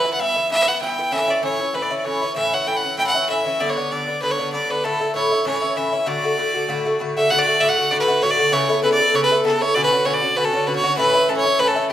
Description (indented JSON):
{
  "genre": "celtic folk",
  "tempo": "194 BPM",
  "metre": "4/4",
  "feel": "swing 55% on 8ths",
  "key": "D major",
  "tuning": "A4 = 440 Hz",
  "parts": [
    { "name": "bright fiddle", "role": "melody", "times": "0.0-11.9 s", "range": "G4 to G5", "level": "-18 LUFS", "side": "right 1 dB", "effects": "none" },
    { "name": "Irish bouzouki", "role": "accompaniment", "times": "0.0-11.9 s", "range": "G2 to A4", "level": "-22 LUFS", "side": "left 1 dB", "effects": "none" }
  ],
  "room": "moderate recital hall reverb, RT60 1.6 s",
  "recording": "minimal, uncompressed stereo recording",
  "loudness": "-17 LUFS",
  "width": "side -11 dB against mid",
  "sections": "0.0-7.3 A section; 7.3-11.9 B section",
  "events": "none",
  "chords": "0.0 Em; 1.1 A; 3.6 G; 4.8 Asus4; 5.4 A; 6.1 D; 8.5 Aadd9/C#; 9.8 Bmadd9; 11.0 A"
}